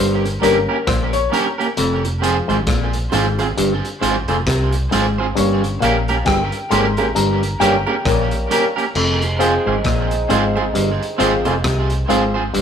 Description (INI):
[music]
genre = roots reggae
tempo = 67 BPM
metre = 4/4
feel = swing 59% on 16ths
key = F minor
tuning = A4 = 440 Hz
[part]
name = auto-wah clav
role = riff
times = 0.0-12.6 s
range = F2 to C3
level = -21 LUFS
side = left 2 dB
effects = none
[part]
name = warm upright piano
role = stabs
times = 0.0-12.3 s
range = F3 to C6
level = -22 LUFS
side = left 4 dB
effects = none
[part]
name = vintage muted fingered electric bass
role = bass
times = 0.0-12.6 s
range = F1 to C2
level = -22 LUFS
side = right 1 dB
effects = none
[part]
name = crunchy breakbeat drum kit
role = drums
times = 0.3-12.6 s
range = crash cymbal, hi-hat, kick drum, rim click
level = -25 LUFS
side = equal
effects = none
[part]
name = electric guitar at the edge of break-up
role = accompaniment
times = 0.4-12.4 s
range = Bb3 to C5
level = -20 LUFS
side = right 3 dB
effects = tape echo
[part]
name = bongos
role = percussion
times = 0.4-12.3 s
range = none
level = -28 LUFS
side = right 4 dB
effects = none
[part]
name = muted trombone section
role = second line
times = 7.6-12.6 s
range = G3 to Eb4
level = -25 LUFS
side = right 3 dB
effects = none
[sound]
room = wet studio reverb, RT60 0.8 s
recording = band playing live in one room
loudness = -15 LUFS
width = side -8 dB against mid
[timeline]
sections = 0.0-9.0 A section; 9.0-12.6 B section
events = upright piano solo 0.0-9.0; band accent 5.4-9.0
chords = 0.0 Gdim; 1.8 Fm; 5.4 Gdim; 9.0 Fm